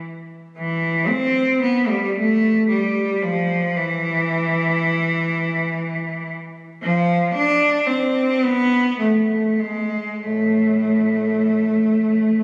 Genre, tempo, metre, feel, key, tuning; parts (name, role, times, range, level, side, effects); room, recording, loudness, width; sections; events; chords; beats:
classical, free, expressive piece for unaccompanied cello; 24-39 BPM (dotted quarters); 6/8; rubato; A minor; A4 = 440 Hz
clear cello; solo; 0.6-12.4 s; A2 to D4; -20 LUFS; equal
wet concert hall reverb, RT60 2.2 s; recorded on a phone in the room, studio reverb, compression; -20 LUFS; mono
0.6-12.4 A section
| 0.57 2.17 | 3.75 5.29 | 6.83 8.45 | 10.24 12.11